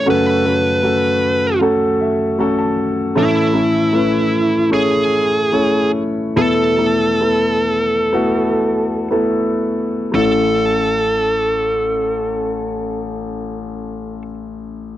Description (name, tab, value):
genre	pop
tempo	57-78 BPM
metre	4/4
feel	straight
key	A major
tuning	A4 = 441 Hz
part	smooth overdriven lead guitar	melody	0.0-14.2 s	E4 to B4	-17 LUFS	right 1 dB	slapback echo
part	warm concert grand piano	accompaniment	0.0-15.0 s	A1 to A5	-17 LUFS	left 1 dB	none
room	light reverb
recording	dry, close 1970s-style studio recording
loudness	-14 LUFS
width	side -13 dB against mid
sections	0.0-10.1 A section; 10.1-14.3 B section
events	grand piano fill 1.6-3.2; slowing down 3.2-10.1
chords	0.1 F#m; 3.2 A; 6.4 Esus4; 10.1 A